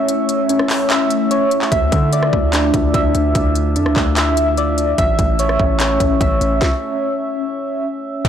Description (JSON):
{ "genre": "hip hop, trap", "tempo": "147 BPM", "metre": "4/4", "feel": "half-time", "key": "unclear", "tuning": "A4 = 440 Hz", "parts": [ { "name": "glassy FM pad", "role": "sustained chords", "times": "0.0-8.3 s", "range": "D3 to F4", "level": "-24 LUFS", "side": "left 1 dB", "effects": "ensemble chorus, built-in reverb" }, { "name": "soft electric-piano-like synth keys", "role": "arpeggios", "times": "0.0-8.3 s", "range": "C#4 to E5", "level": "-17 LUFS", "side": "equal", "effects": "chorus, phaser, low-pass filter, digital delay" }, { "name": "trap drum kit", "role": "drums", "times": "0.1-8.3 s", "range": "crash cymbal, handclaps, hi-hat, kick drum, rim click, snare drum", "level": "-19 LUFS", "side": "equal", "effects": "none" }, { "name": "hard-hitting 808-style bass", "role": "bass", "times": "1.7-8.3 s", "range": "A1 to D3", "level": "-19 LUFS", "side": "equal", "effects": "none" }, { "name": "impact", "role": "sound effects", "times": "8.2-8.3 s", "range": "none", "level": "-14 LUFS", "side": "right 1 dB", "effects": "none" } ], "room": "light reverb, digital ambience", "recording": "blown-out, overdriven recording, overdrive", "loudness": "-14 LUFS", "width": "side -9 dB against mid", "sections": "0.0-8.2 A section", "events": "break 0.0-1.7; stop 6.6-8.2", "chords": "0.0 A; 1.7 Dmadd9; 5.0 A" }